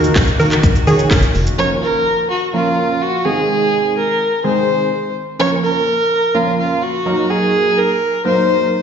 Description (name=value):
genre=dance-pop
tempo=126 BPM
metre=4/4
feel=straight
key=Bb minor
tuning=A4 = 437 Hz
part: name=wide unison pluck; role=melody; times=0.0-1.4 s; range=Ab4 to Bb4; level=-20 LUFS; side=right 2 dB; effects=sidechain pumping, slapback echo, ping-pong delay
part: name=warm analog keys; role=accompaniment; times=0.0-8.7 s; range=Eb3 to Db5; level=-20 LUFS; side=right 1 dB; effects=chorus, sidechain pumping, slapback echo
part: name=sweeping resonant pad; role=sustained chords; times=0.0-1.6 s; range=Eb3 to Gb4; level=-23 LUFS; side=left 2 dB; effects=chorus, sidechain pumping
part: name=organ-like FM bass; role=bass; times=0.0-1.5 s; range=F1 to Eb3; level=-16 LUFS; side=equal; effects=sidechain pumping
part: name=house drum kit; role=drums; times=0.0-1.6 s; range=handclaps, hi-hat, kick drum, shaker, snare drum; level=-15 LUFS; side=equal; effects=none
part: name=dark fiddle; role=melody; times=1.6-8.8 s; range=F4 to Db5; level=-15 LUFS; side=equal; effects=slapback echo, ping-pong delay
room=moderate plate reverb, RT60 1.8 s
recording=live gig heard through the venue's PA, recital hall reverb, nothing above 7.5 kHz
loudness=-13 LUFS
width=side -7 dB against mid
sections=0.0-1.6 A section; 1.6-8.8 B section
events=drop 0.0-1.6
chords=0.0 Ebm; 1.6 Bbm; 3.3 Ab; 5.4 Bbm; 7.1 Ebm